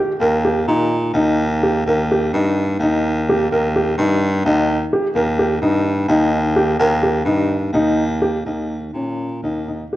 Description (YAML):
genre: contemporary instrumental, chamber music in an uneven meter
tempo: 254 BPM (eighths)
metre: 7/8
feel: straight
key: Eb mixolydian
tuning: A4 = 439 Hz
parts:
  - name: felt-muted upright piano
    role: arpeggios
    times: 0.0-10.0 s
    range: Db4 to Bb4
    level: -18 LUFS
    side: equal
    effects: none
  - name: clear baritone saxophone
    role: bass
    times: 0.2-9.8 s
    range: Eb2 to Bb2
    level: -19 LUFS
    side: equal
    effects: none
room: wet scoring stage reverb, RT60 1.6 s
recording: worn, warbling old tape, cassette tape, warbly pitch drift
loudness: -15 LUFS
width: side -15 dB against mid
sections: 0.0-8.5 A section; 8.5-10.0 B section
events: none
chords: 0.0 Eb; 8.5 Eb7(no3)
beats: | 0.21 0.44 0.68 0.91 1.15 1.39 1.63 | 1.87 2.10 2.34 2.58 2.81 3.05 3.28 | 3.52 3.75 3.99 4.22 4.45 4.69 4.92 | 5.15 5.38 5.62 5.85 6.09 6.32 6.55 | 6.79 7.03 7.26 7.50 7.74 7.98 8.22 | 8.46 8.71 8.95 9.19 9.43 9.67 9.91